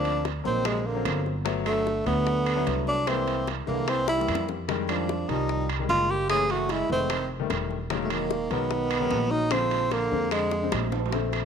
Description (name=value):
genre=Afro-Cuban jazz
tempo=149 BPM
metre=4/4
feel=straight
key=unclear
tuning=A4 = 438 Hz
part: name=warm tenor saxophone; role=melody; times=0.0-10.9 s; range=Ab3 to Ab4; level=-27 LUFS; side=right 1 dB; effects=none
part: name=warm trombone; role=second line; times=0.0-10.9 s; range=B2 to Db4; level=-34 LUFS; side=right 11 dB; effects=none
part: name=clear grand piano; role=accompaniment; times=0.0-11.4 s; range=D3 to A#4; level=-32 LUFS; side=left 12 dB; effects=none
part: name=upright bass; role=bass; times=0.0-11.4 s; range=Fb1 to F2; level=-31 LUFS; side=right 1 dB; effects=none
part: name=bongos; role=percussion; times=0.1-11.4 s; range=none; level=-36 LUFS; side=left 11 dB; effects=none
part: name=timbales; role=percussion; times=0.1-11.4 s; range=none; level=-35 LUFS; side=right 14 dB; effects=none
part: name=claves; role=percussion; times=0.7-11.4 s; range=none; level=-40 LUFS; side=left 10 dB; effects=none
room=moderate echo chamber reverb, RT60 1.9 s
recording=1960s-style stereo with parts hard left and right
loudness=-24 LUFS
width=side -7 dB against mid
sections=0.0-11.1 A section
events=drum fill 4.1-4.7, 10.5-11.1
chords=0.0 D7alt; 1.5 Gmaj7; 3.1 C7b13; 4.7 Fm9; 6.3 Gbm9; 7.1 F9; 7.9 Emaj9#11; 9.5 Bb7